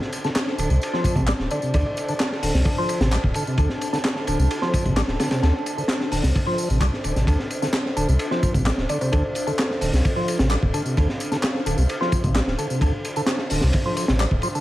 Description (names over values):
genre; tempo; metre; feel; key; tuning
breakbeat, breaks; 130 BPM; 4/4; straight; D minor; A4 = 440 Hz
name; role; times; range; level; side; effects
dark analog pad; sustained chords; 0.0-14.6 s; D4 to A5; -31 LUFS; equal; chorus, phaser, sidechain pumping
crunchy breakbeat drum kit; drums; 0.0-14.5 s; hi-hat, kick drum, ride cymbal, snare drum; -24 LUFS; equal; none
electronic tambourine and handclaps; drums; 0.1-14.6 s; none; -33 LUFS; left 1 dB; overdrive
percussive tonewheel organ; riff; 0.2-14.6 s; C3 to G3; -26 LUFS; equal; chorus vibrato, slow rotary speaker, tube saturation
saturated sub bass; bass; 0.6-14.4 s; D1 to D2; -21 LUFS; equal; none
kalimba; melody; 1.5-1.9, 8.9-9.9 s; A4 to D5; -31 LUFS; equal; small speaker sound, vintage 12-bit sampler grit, ping-pong delay
room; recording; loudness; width
small room ambience; vinyl crackle; -20 LUFS; side -15 dB against mid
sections
0.0-14.6 A section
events
none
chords
0.0 Dm7